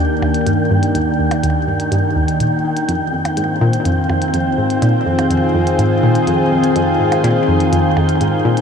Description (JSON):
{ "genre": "ambient, sequencer-driven space music", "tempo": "124 BPM", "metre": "4/4", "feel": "straight", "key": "F dorian", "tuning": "A4 = 440 Hz", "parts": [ { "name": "lush unison pad", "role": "sustained chords", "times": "0.0-8.6 s", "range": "Eb3 to Ab4", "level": "-16 LUFS", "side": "left 1 dB", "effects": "chorus" }, { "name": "analog pluck", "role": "riff", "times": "0.0-8.5 s", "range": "Eb2 to Eb3", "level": "-18 LUFS", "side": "equal", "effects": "chorus, ping-pong delay" }, { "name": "wind-like tuned noise texture", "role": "texture", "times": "0.0-8.6 s", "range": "G5", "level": "-23 LUFS", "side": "right 2 dB", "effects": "built-in reverb" }, { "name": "electronic percussion blips and hi-hat", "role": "percussion", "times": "0.2-8.6 s", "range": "none", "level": "-29 LUFS", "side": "right 2 dB", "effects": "ping-pong delay" } ], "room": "wet huge ambient reverb, RT60 7.2 s", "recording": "none", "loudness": "-13 LUFS", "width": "side -7 dB against mid", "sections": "0.0-8.6 A section", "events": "filter sweep on synth arpeggio sound 0.0-8.6", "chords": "0.0 Ebmaj7; 2.9 Fm7" }